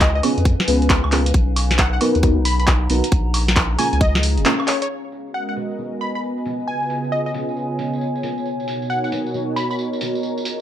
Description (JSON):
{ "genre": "UK garage, two-step garage", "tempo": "135 BPM", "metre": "4/4", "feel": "swing 64% on 16ths", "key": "unclear", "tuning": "A4 = 441 Hz", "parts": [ { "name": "plucky unison lead", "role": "melody", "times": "0.0-9.8 s", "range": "C#5 to B5", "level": "-25 LUFS", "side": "equal", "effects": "analog delay" }, { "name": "saturated sub bass", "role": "bass", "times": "0.0-4.4 s", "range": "E#1 to E#2", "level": "-19 LUFS", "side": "equal", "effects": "tube saturation" }, { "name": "electronic kick drum", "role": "drums", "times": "0.0-4.1 s", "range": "none", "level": "-17 LUFS", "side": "equal", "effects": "overdrive" }, { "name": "punchy analog drum machine", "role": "drums", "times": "0.0-10.6 s", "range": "handclaps, hi-hat, snare drum, tambourine, woodblock", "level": "-22 LUFS", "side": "equal", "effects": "low-pass filter on hats, low-pass filter on snare, low-pass filter on perc, low-pass filter on room" }, { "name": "warbly tape-like pad", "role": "texture", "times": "0.0-10.6 s", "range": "B3 to A#5", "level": "-26 LUFS", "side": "equal", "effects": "chorus, built-in reverb, sidechain pumping" }, { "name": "deep mellow chord stab", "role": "stabs", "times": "0.2-10.2 s", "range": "A#3 to B4", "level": "-23 LUFS", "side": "equal", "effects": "chorus, phaser, analog delay" }, { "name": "warm analog pad", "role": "sustained chords", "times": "5.4-10.6 s", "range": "B2 to D#5", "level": "-27 LUFS", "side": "right 1 dB", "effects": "chorus, sidechain pumping" } ], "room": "light reverb, digital ambience", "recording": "dry, gritty hardware recording", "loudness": "-17 LUFS", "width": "side -11 dB against mid", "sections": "0.0-4.9 A section; 4.9-10.6 B section", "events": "kick drops out 4.5-4.9; band accent 4.5; filter sweep on drum 4.9-10.6; filter sweep on synth stab 4.9-10.6", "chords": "0.0 C#7; 1.3 Bmaj7; 3.1 A#m7; 4.9 G#m7; 6.5 C#7; 8.5 Bmaj7", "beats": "0.01 0.45 0.90 | 1.34 1.79 2.23 2.68 | 3.12 3.56 4.01 4.45 | 4.90 5.34 5.79 6.23 | 6.68 7.12 7.57 8.01 | 8.45 8.90 9.34 9.79 | 10.23" }